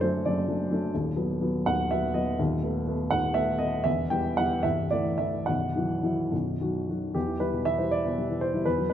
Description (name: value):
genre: classical, romantic character piece for solo piano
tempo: 70-88 BPM (dotted quarters)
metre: 6/8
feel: rubato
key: E minor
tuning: A4 = 440 Hz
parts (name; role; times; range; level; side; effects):
- warm baby grand piano; solo; 0.0-8.9 s; B0 to G5; -25 LUFS; equal; none
room: moderate concert hall reverb, RT60 2.4 s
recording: close, detailed microphones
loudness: -25 LUFS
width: side -10 dB against mid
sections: 0.0-7.2 A section; 7.2-8.9 B section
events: none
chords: 0.0 D/F#; 0.9 B/D#; 2.4 B7/D#; 3.9 Em; 4.6 Am/C; 5.5 Bsus4; 6.3 B; 7.2 Em